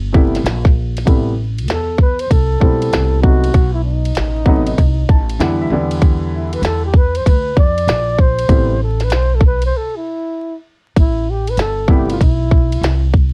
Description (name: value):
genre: hip hop, jazz-hop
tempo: 97 BPM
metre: 4/4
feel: swing 65% on 16ths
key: A minor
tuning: A4 = 441 Hz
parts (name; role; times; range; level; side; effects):
- upright bass; bass; 0.0-13.3 s; G1 to F2; -20 LUFS; equal; none
- dark upright piano; accompaniment; 0.1-12.1 s; C3 to A5; -21 LUFS; equal; none
- minimal click drum kit; drums; 0.1-13.3 s; hi-hat, kick drum, ride cymbal, snare drum; -16 LUFS; equal; none
- breathy flugelhorn; melody; 1.7-13.1 s; D#4 to D5; -23 LUFS; equal; none
room: little or no reverb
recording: dark, warm production, vinyl crackle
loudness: -15 LUFS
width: mono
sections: 0.0-1.1 A section; 1.1-11.0 B section; 11.0-13.3 C section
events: flugelhorn solo 1.1-11.0; upright piano fill 4.8-6.0; break 9.7-11.0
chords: 0.0 Am9; 3.5 B7b9; 5.7 Em7; 8.5 Amadd9; 11.0 Am9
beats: 0.45 | 1.07 1.69 2.31 2.92 | 3.54 4.16 4.78 5.40 | 6.02 6.63 7.25 7.87 | 8.49 9.11 9.73 10.35 | 10.96 11.58 12.20 12.82